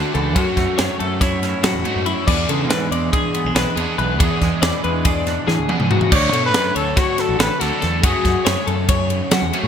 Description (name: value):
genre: math rock and midwest emo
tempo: 281 BPM (eighths)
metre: 9/8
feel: straight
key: unclear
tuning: A4 = 441 Hz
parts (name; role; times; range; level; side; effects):
- semi-hollow electric guitar; accompaniment; 0.0-6.1 s; E2 to G#4; -25 LUFS; right 6 dB; wide subtle chorus
- twelve-string electric guitar; arpeggios; 0.0-9.7 s; E4 to D5; -23 LUFS; left 7 dB; analog chorus
- overdriven electric guitar; riff; 0.0-9.7 s; F#2 to G#4; -24 LUFS; right 2 dB; ensemble chorus
- growling fingered electric bass; bass; 0.0-9.7 s; A1 to F#3; -22 LUFS; equal; overdrive
- crisp fusion drum kit; drums; 0.1-9.6 s; crash cymbal, kick drum, ride cymbal, snare drum, toms; -20 LUFS; equal; none
- warm trumpet; melody; 6.1-8.6 s; G#4 to C#5; -22 LUFS; left 1 dB; ping-pong delay
room: moderate plate reverb, RT60 1.5 s, studio reverb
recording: bright 1980s-style digital production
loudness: -16 LUFS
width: side -8 dB against mid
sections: 0.0-6.1 A section; 6.1-9.7 B section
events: drum fill 5.5-6.1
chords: 0.4 F#m7; 2.3 E7; 6.1 Dmaj7; 8.0 F#madd9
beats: 0.15 | 0.36 0.57 0.79 1.00 1.21 1.43 1.64 1.85 2.07 | 2.28 2.49 2.71 2.92 3.13 3.35 3.56 3.77 3.99 | 4.20 4.41 4.63 4.84 5.05 5.26 5.48 5.69 5.91 | 6.12 6.33 6.54 6.76 6.97 7.18 7.40 7.61 7.82 | 8.04 8.25 8.46 8.68 8.89 9.10 9.32 9.53